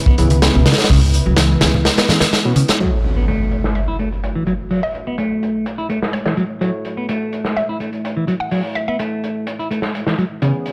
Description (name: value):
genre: breakbeat, breaks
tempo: 126 BPM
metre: 4/4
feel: straight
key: F# minor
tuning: A4 = 436 Hz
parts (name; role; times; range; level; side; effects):
- dark analog pad; sustained chords; 0.0-10.7 s; A3 to E5; -31 LUFS; equal; chorus, sidechain pumping
- upright bass; bass; 0.0-1.9 s; C#2; -18 LUFS; equal; none
- semi-hollow electric guitar; riff; 0.1-10.5 s; B2 to E4; -23 LUFS; equal; low-pass filter, analog delay
- crunchy breakbeat drum kit; drums; 0.1-10.7 s; hi-hat, kick drum, snare drum; -21 LUFS; equal; low-pass filter on kick, low-pass filter on hats, low-pass filter on snare, low-pass filter on room
- dark baby grand piano; stabs; 0.2-10.7 s; E3 to C#5; -29 LUFS; equal; vintage 12-bit sampler grit, low-pass filter, analog delay
- congas; percussion; 0.3-2.7 s; none; -24 LUFS; equal; none
- impact; sound effects; 2.8-4.7 s; none; -23 LUFS; equal; none
- hollow square pluck; melody; 3.8-9.0 s; C#5 to F#5; -27 LUFS; equal; chorus, small speaker sound, analog delay
room: small room ambience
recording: dry, gritty hardware recording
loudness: -18 LUFS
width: mono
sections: 0.0-2.8 A section; 2.8-10.7 B section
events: impact 2.8-4.7; filter sweep on grand piano 2.8-10.7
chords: 0.0 C#m7; 2.8 F#m7